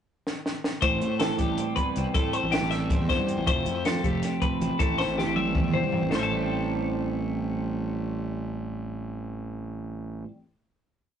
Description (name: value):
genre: math rock and midwest emo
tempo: 318 BPM (eighths)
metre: 7/8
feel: straight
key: A minor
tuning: A4 = 441 Hz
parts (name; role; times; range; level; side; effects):
- compact cocktail drum kit; drums; 0.3-6.2 s; hi-hat, kick drum, snare drum, toms; -28 LUFS; equal; none
- twelve-string electric guitar; accompaniment; 0.8-10.5 s; E2 to A4; -29 LUFS; right 4 dB; none
- twelve-string electric guitar; arpeggios; 0.8-10.3 s; G4 to A5; -29 LUFS; left 4 dB; spring reverb, tape echo
- fuzz fingered electric bass; bass; 0.8-10.2 s; F1 to A2; -32 LUFS; left 1 dB; overdrive
room: light reverb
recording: rough rehearsal-room recording, tube saturation, nothing above 10.6 kHz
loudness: -25 LUFS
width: side -8 dB against mid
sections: 0.0-0.8 pickup bar; 0.8-6.1 A section; 6.1-8.8 final chord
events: drum fill 0.3-0.8, 5.0-6.1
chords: 0.0 N.C.; 0.8 Am7; 3.5 Fmaj7; 4.8 Am7